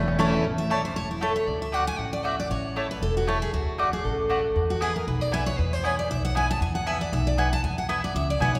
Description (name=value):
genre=bluegrass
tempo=234 BPM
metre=4/4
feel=swing 55% on 8ths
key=A major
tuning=A4 = 442 Hz
part: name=bluegrass banjo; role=melody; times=0.0-0.5 s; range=A3 to C#4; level=-38 LUFS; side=equal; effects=none
part: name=picked steel-string acoustic guitar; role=accompaniment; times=0.0-8.6 s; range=E2 to A5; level=-30 LUFS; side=equal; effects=none
part: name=upright bass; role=bass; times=0.0-8.6 s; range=E1 to E2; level=-31 LUFS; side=equal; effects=none
part: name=mandolin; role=stabs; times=0.2-8.5 s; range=A3 to A5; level=-31 LUFS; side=equal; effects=none
room=wet church reverb, RT60 3.2 s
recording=recorded in a church or concert hall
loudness=-26 LUFS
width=mono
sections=0.5-8.6 A section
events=steel-string acoustic guitar solo 0.5-8.6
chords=0.5 A; 1.5 D; 2.5 A; 3.5 D; 4.6 E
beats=0.19 | 0.45 0.71 0.96 1.22 | 1.48 1.74 1.99 2.25 | 2.50 2.76 3.02 3.28 | 3.53 3.79 4.05 4.30 | 4.56 4.82 5.07 5.33 | 5.59 5.84 6.10 6.36 | 6.61 6.87 7.13 7.38 | 7.64 7.90 8.15 8.41